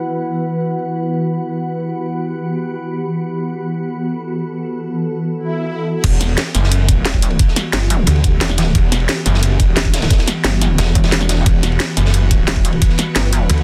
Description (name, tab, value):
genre	dark technical drum and bass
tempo	177 BPM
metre	4/4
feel	straight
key	E minor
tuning	A4 = 440 Hz
part	swarming drone	sustained chords	0.0-13.6 s	E3 to B4	-24 LUFS	equal	built-in reverb, sidechain pumping
part	warbly tape-like pad	texture	0.0-5.4 s	E4 to F#5	-29 LUFS	equal	chorus, built-in reverb, sidechain pumping
part	swell	sound effects	5.4-6.0 s	none	-31 LUFS	equal	none
part	snarling distorted saw bass	bass	6.0-13.6 s	E1 to D2	-17 LUFS	equal	overdrive, sidechain pumping
part	crunchy breakbeat drum kit	drums	6.0-13.6 s	ride cymbal, snare drum	-29 LUFS	equal	high-pass filter on cymbals, high-pass filter on snare, high-pass filter on room
part	drum and bass drum kit	drums	6.0-13.6 s	crash cymbal, hi-hat, snare drum	-22 LUFS	equal	none
part	electronic kick drum	drums	6.0-12.9 s	none	-17 LUFS	equal	none
part	pulsing pluck wobble bass	bass	7.1-13.5 s	E1 to G1	-19 LUFS	equal	chorus
room	little or no reverb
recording	dense, heavily limited modern master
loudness	-17 LUFS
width	mono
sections	0.0-6.0 A section; 6.0-13.6 B section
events	swell 5.4-6.0; drop 6.0-13.6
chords	0.0 Emadd9